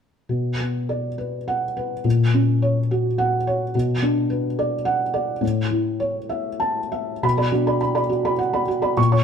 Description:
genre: neoclassical minimalist piano.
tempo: 92-109 BPM.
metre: 3/4.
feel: rubato.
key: B minor.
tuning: A4 = 440 Hz.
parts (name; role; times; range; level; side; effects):
felt-muted upright piano; solo; 0.3-9.2 s; A2 to C#6; -19 LUFS; equal; none.
room: wet studio reverb, RT60 0.7 s.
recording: band playing live in one room.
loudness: -20 LUFS.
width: side -7 dB against mid.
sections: 0.3-7.2 A section; 7.2-9.2 B section.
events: none.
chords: 0.3 Bm; 2.0 F#/A#; 3.7 Bm; 5.4 A; 7.2 Bm.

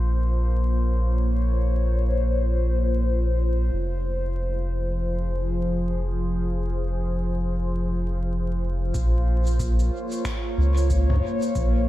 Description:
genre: ambient dub.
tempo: 92 BPM.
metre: 4/4.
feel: swing 60% on 16ths.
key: Bb minor.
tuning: A4 = 440 Hz.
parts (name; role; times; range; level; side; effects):
warbly tape-like pad; sustained chords; 0.0-11.9 s; F3 to Db5; -28 LUFS; left 1 dB; chorus, built-in reverb, phaser.
soft dub sub bass; bass; 0.0-11.9 s; F1 to Db2; -22 LUFS; equal; none.
electronic kick drum; drums; 8.9-11.7 s; none; -30 LUFS; equal; none.
organic electronic drum kit; drums; 8.9-11.7 s; cabasa, finger snaps, toms; -34 LUFS; equal; low-pass filter on perc, low-pass filter on snare, low-pass filter on toms, low-pass filter on room, dub echo.
room: little or no reverb.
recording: dark, warm production, vinyl crackle.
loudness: -22 LUFS.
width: side -15 dB against mid.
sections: 0.0-8.9 A section; 8.9-11.9 B section.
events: none.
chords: 0.0 Bbmadd9; 3.7 Fm; 8.9 Bbmadd9.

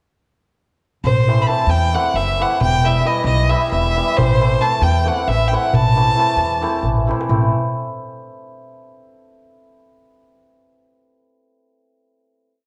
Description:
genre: balkan folk, Balkan wedding band.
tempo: 269 BPM (eighths).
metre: 7/8.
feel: straight.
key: A dorian sharp4.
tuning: A4 = 441 Hz.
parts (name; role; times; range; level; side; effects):
clear violin; melody; 1.0-6.8 s; C5 to B5; -21 LUFS; equal; none.
upright bass; bass; 1.0-7.5 s; E1 to E2; -22 LUFS; equal; none.
darbuka; percussion; 1.1-7.5 s; none; -23 LUFS; equal; none.
hammered dulcimer; accompaniment; 1.3-7.5 s; E3 to E4; -25 LUFS; equal; none.
room: wet recital hall reverb, RT60 1.5 s.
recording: dark, warm production.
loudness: -17 LUFS.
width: mono.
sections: 1.1-7.3 A section; 7.3-8.9 final chord.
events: drum fill 6.8-7.3.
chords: 1.1 Am; 2.6 Em; 4.2 Am.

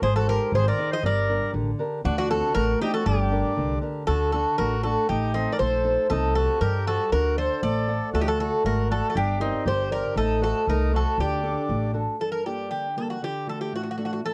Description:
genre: greek folk, Greek bouzouki band.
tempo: 118 BPM.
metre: 2/4.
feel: straight.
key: G harmonic minor.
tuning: A4 = 440 Hz.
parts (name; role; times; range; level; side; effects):
Greek bouzouki; melody; 0.0-14.3 s; Eb4 to Eb5; -28 LUFS; equal; none.
accordion; second line; 0.0-11.9 s; C4 to C5; -33 LUFS; equal; none.
fingerpicked steel-string acoustic guitar; accompaniment; 0.0-14.3 s; G2 to F#5; -33 LUFS; equal; none.
upright bass; bass; 0.0-12.0 s; G1 to G2; -28 LUFS; equal; none.
room: light reverb.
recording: worn, warbling old tape, cassette tape, warbly pitch drift.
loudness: -25 LUFS.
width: mono.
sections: 0.0-4.1 A section; 4.1-12.2 B section; 12.2-14.3 C section.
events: none.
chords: 0.0 Ab; 1.0 Gm; 2.0 D7; 3.1 Gm; 4.1 D; 5.1 Adim; 6.1 Cm; 7.1 D; 9.2 Gm; 10.2 Adim; 11.2 D; 12.2 Gm; 13.2 D.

